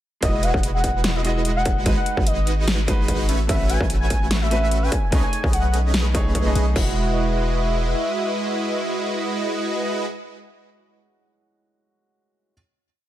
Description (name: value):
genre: future bass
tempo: 147 BPM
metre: 4/4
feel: swing 53% on 16ths, half-time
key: E major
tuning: A4 = 440 Hz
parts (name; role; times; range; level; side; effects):
- warm velvety synth lead; melody; 0.2-10.1 s; D#5 to G#5; -27 LUFS; left 1 dB; chorus, sidechain pumping, digital delay
- clear grand piano; accompaniment; 0.2-12.5 s; G#3 to F#5; -30 LUFS; right 2 dB; sidechain pumping, digital delay
- supersaw chords; riff; 0.2-10.1 s; G#3 to E5; -25 LUFS; right 1 dB; sidechain pumping
- long sustained 808-style bass; bass; 0.2-7.9 s; E1 to B1; -22 LUFS; equal; sidechain pumping
- big-room dance drum kit; drums; 0.2-6.8 s; crash cymbal, hi-hat, snare drum; -26 LUFS; equal; none
- electronic kick drum; drums; 0.2-6.8 s; none; -22 LUFS; equal; distortion
room: digital ambience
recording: none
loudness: -19 LUFS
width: side -13 dB against mid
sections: 0.2-6.8 drop; 6.8-10.0 final chord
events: drop 0.2-6.8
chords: 0.2 Emaj9; 1.9 G#m7; 3.3 A69; 4.9 B13; 6.8 Emaj9